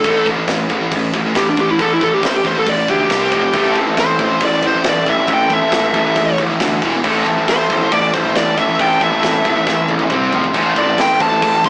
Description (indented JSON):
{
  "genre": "heavy metal",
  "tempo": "137 BPM",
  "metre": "4/4",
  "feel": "straight",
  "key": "A minor",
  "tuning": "A4 = 440 Hz",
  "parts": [
    { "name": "high-gain lead guitar", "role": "melody", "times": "0.0-11.7 s", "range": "D4 to C6", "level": "-16 LUFS", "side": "equal", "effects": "distortion" },
    { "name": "heavy high-gain guitar", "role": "riff", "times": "0.0-11.7 s", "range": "E2 to C4", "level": "-27 LUFS", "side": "right 1 dB", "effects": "none" },
    { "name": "scooped high-gain guitar", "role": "riff", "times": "0.0-11.7 s", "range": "E2 to C4", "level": "-22 LUFS", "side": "left 1 dB", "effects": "distortion" },
    { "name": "fuzz picked electric bass", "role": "bass", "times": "0.0-11.7 s", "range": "E1 to D2", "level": "-19 LUFS", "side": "equal", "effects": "overdrive" },
    { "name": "tight metal drum kit", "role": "drums", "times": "0.0-11.7 s", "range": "crash cymbal, kick drum, snare drum, toms", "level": "-21 LUFS", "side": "equal", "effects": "none" },
    { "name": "raw garage guitar", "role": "riff", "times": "3.5-11.7 s", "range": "A2 to C5", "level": "-19 LUFS", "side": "equal", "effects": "overdrive" }
  ],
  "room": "moderate stone room reverb, RT60 1.4 s",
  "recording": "rough rehearsal-room recording, warm saturation, small speaker sound",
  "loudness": "-12 LUFS",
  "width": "side -27 dB against mid",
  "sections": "0.0-11.7 A section",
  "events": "lead electric guitar solo 0.0-11.7; drum fill 9.7-10.6",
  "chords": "0.1 A5; 3.1 C5; 3.3 F5; 3.5 Am; 6.8 E5; 7.1 Am; 10.1 C5; 10.3 F5; 10.6 Am"
}